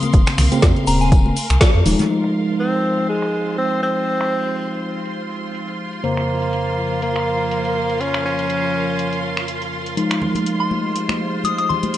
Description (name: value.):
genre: deep house.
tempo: 122 BPM.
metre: 4/4.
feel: swing 56% on 16ths.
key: F minor.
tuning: A4 = 440 Hz.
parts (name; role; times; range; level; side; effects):
soft synth bell; melody; 0.0-1.7, 10.6-11.9 s; Ab5 to Eb6; -24 LUFS; left 2 dB; chorus, phaser, tape echo.
mellow tine electric piano; stabs; 0.0-12.0 s; F2 to C5; -22 LUFS; equal; auto-pan, sidechain pumping, low-pass filter, tape echo.
deep house drum kit; drums; 0.0-12.0 s; finger snaps, hi-hat, snare drum; -23 LUFS; equal; low-pass filter on hats, low-pass filter on snare, low-pass filter on room.
congas; percussion; 0.0-2.1, 10.2-11.9 s; none; -26 LUFS; left 1 dB; none.
tube shaker; percussion; 0.0-2.1 s; none; -35 LUFS; left 1 dB; none.
clear symphonic string section; texture; 0.0-12.0 s; F4 to C6; -30 LUFS; equal; sidechain pumping.
sub bass with octave; bass; 0.1-1.9 s; Eb1 to F2; -18 LUFS; equal; tube saturation, sidechain pumping.
electronic kick drum; drums; 0.1-1.7 s; none; -14 LUFS; equal; none.
tambourine and snare drum; drums; 0.1-2.1 s; none; -34 LUFS; right 1 dB; none.
warbly tape-like pad; sustained chords; 4.4-12.0 s; F3 to C6; -31 LUFS; left 1 dB; chorus, built-in reverb, sidechain pumping.
rich studio violin section; texture; 2.1-12.0 s; C6; -30 LUFS; right 4 dB; none.
breathy tenor saxophone; melody; 2.6-9.7 s; Ab3 to Db4; -22 LUFS; equal; tape echo.
room: light reverb, small room ambience.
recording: nothing above 10.3 kHz.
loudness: -17 LUFS.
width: side -13 dB against mid.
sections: 0.0-2.1 A section; 2.1-12.0 B section.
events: band accent 1.6; filter sweep on drum 2.1-12.0; filter sweep on tine electric piano 2.1-12.0; filter sweep on ambient pad 2.1-12.0.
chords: 0.0 Bbmadd9; 2.1 Fm7; 6.0 Bbmadd9/F; 10.0 Fm7.